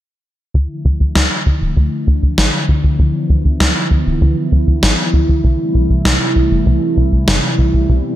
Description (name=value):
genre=synthwave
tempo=98 BPM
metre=4/4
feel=straight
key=D dorian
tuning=A4 = 440 Hz
part: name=warm analog pad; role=sustained chords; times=0.5-8.2 s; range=C3 to E4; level=-18 LUFS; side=right 1 dB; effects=wide subtle chorus
part: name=tight sequencer bass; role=bass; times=0.5-8.0 s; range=D1 to D2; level=-13 LUFS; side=equal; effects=tube saturation
part: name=electronic snare drum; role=drums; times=1.2-7.4 s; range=none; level=-16 LUFS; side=equal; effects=gated reverb, gated reverb snare
room=little or no reverb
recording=none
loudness=-12 LUFS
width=side -13 dB against mid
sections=0.5-8.2 A section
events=filter sweep on analog synth bass 0.5-8.2; filter sweep on analog synth pad 0.5-8.2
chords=0.5 Dmadd9; 5.4 Am7